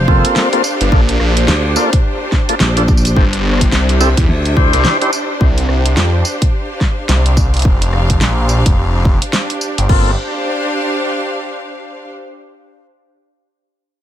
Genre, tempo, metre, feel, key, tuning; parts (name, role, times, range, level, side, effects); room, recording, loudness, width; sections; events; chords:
glitch hop; 107 BPM; 4/4; swing 60% on 16ths; G dorian; A4 = 439 Hz
glassy slap bass; bass; 0.0-4.7 s; F1 to D2; -14 LUFS; equal
clear studio string section; texture; 0.0-12.1 s; D4 to F5; -20 LUFS; equal; sidechain pumping
tonewheel organ; stabs; 0.1-5.1, 9.9-10.1 s; Bb3 to C5; -18 LUFS; left 1 dB; overdrive, slow rotary speaker, sidechain pumping, ping-pong delay
electronic kick drum; drums; 0.1-10.0 s; -13 LUFS; equal
pop drum kit; drums; 0.2-10.0 s; crash cymbal, hi-hat, rim click, snare drum, tambourine; -19 LUFS; equal
phased detuned saw bass; bass; 0.8-10.2 s; F1 to F2; -13 LUFS; equal; phaser, tube saturation
light reverb; -11 LUFS; side -11 dB against mid
0.0-5.4 A section; 5.4-9.9 B section; 9.9-12.1 C section
drop 0.0-5.4; break 4.8-5.4
0.0 Gm11; 0.9 Bbmaj7; 3.2 Am7; 4.3 D9sus4; 5.4 Csus24; 7.7 Gm7; 9.9 Gm11